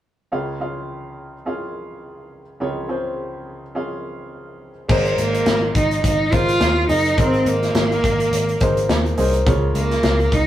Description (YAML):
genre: piano-driven pop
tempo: 105 BPM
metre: 4/4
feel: swing 56% on 16ths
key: Db major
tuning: A4 = 440 Hz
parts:
  - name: clear upright piano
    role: accompaniment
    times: 0.3-10.5 s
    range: Db2 to F5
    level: -24 LUFS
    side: equal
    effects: none
  - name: picked electric bass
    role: bass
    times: 4.9-10.5 s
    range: Gb1 to Eb2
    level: -22 LUFS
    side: equal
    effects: none
  - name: modern studio drum kit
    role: drums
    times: 4.9-10.5 s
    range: crash cymbal, hi-hat, kick drum, snare drum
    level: -21 LUFS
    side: left 1 dB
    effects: none
  - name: rich cello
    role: melody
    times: 5.2-10.5 s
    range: Bb3 to F4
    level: -19 LUFS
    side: right 1 dB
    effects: none
room: moderate studio reverb, RT60 0.6 s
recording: rough rehearsal-room recording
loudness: -17 LUFS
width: side -12 dB against mid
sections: 0.3-4.9 A section; 4.9-10.5 B section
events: none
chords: 0.3 Db; 4.9 Abadd9; 9.5 Db6